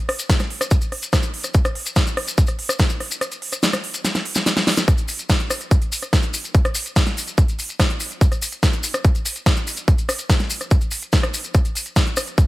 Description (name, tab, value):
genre	trance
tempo	144 BPM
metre	4/4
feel	straight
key	none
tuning	none
part	big-room dance drum kit	drums	0.1-12.5 s	hi-hat, rim click, snare drum	-22 LUFS	equal	none
part	maracas	percussion	0.2-12.5 s	none	-28 LUFS	left 3 dB	none
part	electronic kick drum	drums	0.3-12.5 s	none	-17 LUFS	equal	none
room	little or no reverb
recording	none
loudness	-18 LUFS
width	side -18 dB against mid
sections	0.0-4.9 A section; 4.9-12.5 B section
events	kick drops out 3.2-4.9; drum fill 4.0-4.9; drop 4.9-12.5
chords	none